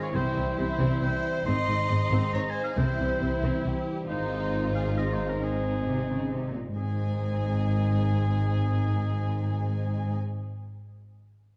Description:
cinematic; 136 BPM; 3/4; straight; Ab major; A4 = 437 Hz
warm symphonic violin section; melody; 0.0-10.2 s; C4 to Ab5; -42 LUFS; equal
clear oboe; second line; 0.0-10.2 s; Ab4 to C6; -37 LUFS; equal
warm symphonic violin section; second line; 0.0-10.2 s; Eb4 to Ab4; -42 LUFS; equal
warm symphonic viola section; accompaniment; 0.0-10.2 s; C4 to E4; -39 LUFS; equal
clear trombone section; sustained chords; 0.0-10.2 s; Eb3 to Ab3; -38 LUFS; equal
dark French horn section; sustained chords; 0.0-10.2 s; C4 to C5; -39 LUFS; equal
rich symphonic cello section; bass; 0.1-10.2 s; Ab2 to Db3; -33 LUFS; equal
warm symphonic double bass section; bass; 0.1-10.2 s; Ab1 to C2; -33 LUFS; equal
wet scoring stage reverb, RT60 1.9 s; dark, warm production; -28 LUFS; mono
0.0-6.8 A section; 6.8-9.4 B section
0.1 C; 1.5 Ab; 2.8 C; 4.1 Ab
| 0.14 0.57 1.01 | 1.46 1.90 2.33 | 2.77 3.21 3.65 | 4.09 4.53 4.97 | 5.42 5.87 6.32 | 6.76 7.20 7.64 | 8.09 8.53 8.97

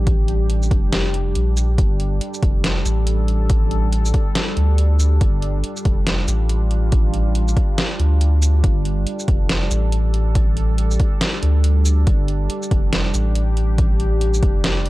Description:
deep dubstep; 140 BPM; 4/4; swing 60% on 16ths, half-time; A4 = 440 Hz
deep dark ambient pad; sustained chords; 0.0-14.9 s; G3 to A4; -26 LUFS; equal; chorus, built-in reverb
saturated sub bass; bass; 0.0-14.9 s; F1 to D2; -18 LUFS; equal
dubstep drum kit; drums; 0.1-14.9 s; hi-hat, shaker, snare drum; -24 LUFS; equal
electronic kick drum; drums; 0.1-14.5 s; -18 LUFS; equal
little or no reverb; dry, gritty hardware recording; -16 LUFS; side -18 dB against mid
0.0-14.9 A section
kick drops out 8.2-8.6
0.0 G5
| 0.07 0.50 0.93 1.35 | 1.78 2.21 2.64 3.07 | 3.50 3.92 4.35 4.78 | 5.21 5.64 6.07 6.50 | 6.92 7.35 7.78 8.21 | 8.64 9.07 9.50 9.93 | 10.35 10.78 11.21 11.64 | 12.07 12.50 12.93 13.35 | 13.78 14.21 14.64

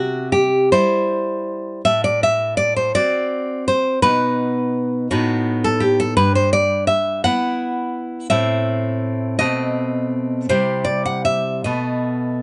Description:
romantic piece for solo classical guitar; 55 BPM (dotted quarters); 6/8; uneven beats, rubato; A4 = 440 Hz
nylon-string guitar; solo; 0.0-12.4 s; G2 to F#5; -19 LUFS; equal
light reverb; nothing above 10.9 kHz; -19 LUFS; mono
0.0-12.4 A section
0.0 C; 1.8 F#dim/A; 4.0 B; 5.1 B7/A; 6.2 Em/G; 8.3 Am; 9.4 B7b9; 10.5 C; 11.7 B7
0.72 | 1.84 2.94 | 4.03 5.11 | 6.18 7.26 | 8.31 9.41 | 10.51 11.66

